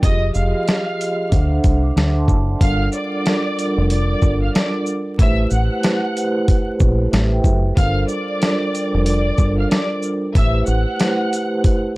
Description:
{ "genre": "hip hop, boom-bap hip-hop", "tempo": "93 BPM", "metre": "4/4", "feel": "swing 63% on 16ths", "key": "G dorian", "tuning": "A4 = 440 Hz", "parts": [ { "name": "warm studio violin section", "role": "melody", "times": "0.0-11.8 s", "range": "D5 to F#6", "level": "-25 LUFS", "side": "equal", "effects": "high-pass filter, low-pass filter" }, { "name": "vibraphone with soft mallets", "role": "accompaniment", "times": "0.0-12.0 s", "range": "F3 to D6", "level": "-21 LUFS", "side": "right 1 dB", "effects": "high-pass filter, low-pass filter" }, { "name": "deep dub fingered electric bass", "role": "bass", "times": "0.0-10.8 s", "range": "F1 to D2", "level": "-18 LUFS", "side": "equal", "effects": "transformer saturation" }, { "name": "dusty soul sampler-style drum kit", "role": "drums", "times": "0.0-11.8 s", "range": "hi-hat, kick drum, shaker, snare drum", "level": "-17 LUFS", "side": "equal", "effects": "none" } ], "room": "little or no reverb", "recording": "dry, gritty hardware recording, vinyl crackle", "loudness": "-15 LUFS", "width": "side -21 dB against mid", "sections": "0.0-2.6 A section; 2.6-12.0 B section", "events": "none", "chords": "0.0 Fm7; 1.3 D7; 2.6 Gm7; 5.2 Am7; 7.8 Gm7; 10.4 Am7" }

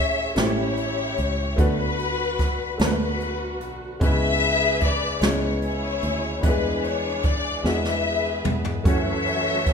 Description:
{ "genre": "slow gospel", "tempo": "50 BPM (dotted quarters)", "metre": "6/8", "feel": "straight", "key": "unclear", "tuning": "A4 = 440 Hz", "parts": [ { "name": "warm symphonic string section", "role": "melody", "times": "0.0-9.7 s", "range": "D4 to E5", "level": "-24 LUFS", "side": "left 3 dB", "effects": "none" }, { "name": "warm concert grand piano", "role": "accompaniment", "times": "0.0-9.7 s", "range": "A2 to C#5", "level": "-27 LUFS", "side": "left 1 dB", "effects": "none" }, { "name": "fingered electric bass", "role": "bass", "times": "0.0-9.7 s", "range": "A1 to F#2", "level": "-29 LUFS", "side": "right 1 dB", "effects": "none" }, { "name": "jazz brush drum kit", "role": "drums", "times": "0.4-9.7 s", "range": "hi-hat, kick drum, snare drum, toms", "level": "-24 LUFS", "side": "right 1 dB", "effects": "none" }, { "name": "overdriven tonewheel organ", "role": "sustained chords", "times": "8.9-9.7 s", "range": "E3 to F#4", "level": "-29 LUFS", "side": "right 4 dB", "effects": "slow rotary speaker, chorus vibrato" } ], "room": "moderate recital hall reverb, RT60 1.8 s", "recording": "recorded in a church or concert hall", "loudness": "-20 LUFS", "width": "side -6 dB against mid", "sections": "0.0-9.7 A section", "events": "drum fill 7.6-8.9", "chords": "0.4 A7; 1.6 D6; 4.0 C#m7; 6.4 E7; 8.9 F#m7" }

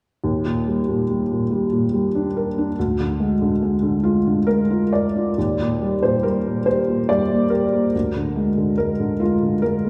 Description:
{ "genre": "neoclassical minimalist piano", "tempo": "47 BPM (dotted quarters)", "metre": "6/8", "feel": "rubato", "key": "Eb major", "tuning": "A4 = 440 Hz", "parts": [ { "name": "felt-muted upright piano", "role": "solo", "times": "0.2-9.9 s", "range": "D2 to D5", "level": "-20 LUFS", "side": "equal", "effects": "none" } ], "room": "wet recital hall reverb, RT60 1.6 s", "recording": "recorded in a church or concert hall", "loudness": "-20 LUFS", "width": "mono", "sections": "0.2-5.4 A section; 5.4-9.9 B section", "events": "none", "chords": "0.2 Ebmaj7; 2.8 Bb7/D; 5.4 Eb; 7.9 Bb7/D" }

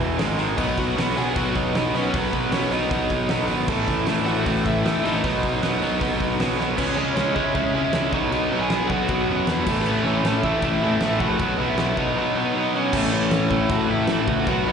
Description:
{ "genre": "punk rock", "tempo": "156 BPM", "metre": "4/4", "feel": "straight", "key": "unclear", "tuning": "A4 = 440 Hz", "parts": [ { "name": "overdriven electric guitar", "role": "riff", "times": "0.0-14.7 s", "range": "E2 to C#4", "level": "-26 LUFS", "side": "left 12 dB", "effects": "slapback echo" }, { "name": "tight distorted guitar", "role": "riff", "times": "0.0-14.7 s", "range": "E2 to C#4", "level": "-24 LUFS", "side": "right 9 dB", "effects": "distortion, slapback echo" }, { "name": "fuzz picked electric bass", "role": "bass", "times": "0.0-14.7 s", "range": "E1 to A2", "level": "-28 LUFS", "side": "equal", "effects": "overdrive" }, { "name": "big rock drum kit", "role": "drums", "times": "0.2-14.6 s", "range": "crash cymbal, hi-hat, kick drum, snare drum", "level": "-27 LUFS", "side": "equal", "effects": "none" }, { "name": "high-gain lead guitar", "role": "melody", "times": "0.6-14.7 s", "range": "B3 to G#5", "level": "-27 LUFS", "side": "left 1 dB", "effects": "distortion" } ], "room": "light reverb, studio reverb", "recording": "live gig heard through the venue's PA, club reverb, nothing above 10.8 kHz", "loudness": "-19 LUFS", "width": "side -7 dB against mid", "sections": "0.0-6.8 A section; 6.8-12.9 B section; 12.9-14.7 C section", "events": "drum fill 6.6", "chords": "0.2 G#5; 0.6 B; 3.7 A5; 5.2 B; 6.8 C#m; 8.1 B; 9.7 A; 11.4 B; 12.9 A" }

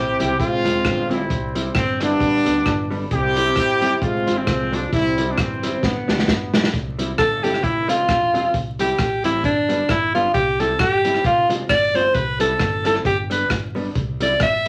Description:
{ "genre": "ska", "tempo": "133 BPM", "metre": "4/4", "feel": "swing 56% on 8ths", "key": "C major", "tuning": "A4 = 440 Hz", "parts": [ { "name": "warm horn section", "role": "melody", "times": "0.0-6.7 s", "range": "D3 to G4", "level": "-22 LUFS", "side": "equal", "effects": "none" }, { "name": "upright bass", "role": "bass", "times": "0.0-14.7 s", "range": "E1 to D2", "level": "-32 LUFS", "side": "equal", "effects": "none" }, { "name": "vintage hollow-body jazz guitar", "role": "accompaniment", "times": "0.2-14.7 s", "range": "G3 to G4", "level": "-30 LUFS", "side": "equal", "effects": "none" }, { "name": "vintage drum kit", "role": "drums", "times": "0.2-14.7 s", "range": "hi-hat, kick drum, rim click, snare drum", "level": "-26 LUFS", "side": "equal", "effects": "none" }, { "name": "edgy alto saxophone", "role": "melody", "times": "7.2-14.7 s", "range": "D4 to E5", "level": "-20 LUFS", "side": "equal", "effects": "none" } ], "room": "wet studio ambience, RT60 0.5 s", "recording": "vinyl crackle", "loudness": "-20 LUFS", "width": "mono", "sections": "0.0-6.7 A section; 6.7-14.7 B section", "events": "drum fill 5.8-6.7; alto saxophone solo 6.7-14.7", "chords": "0.4 Fm; 1.3 C; 2.2 G; 3.1 C; 4.0 Fm; 4.9 C; 5.8 G; 6.7 C; 7.6 Fm; 8.5 C; 9.4 G; 10.3 C; 11.2 Fm; 12.2 C; 13.1 G; 14.0 C" }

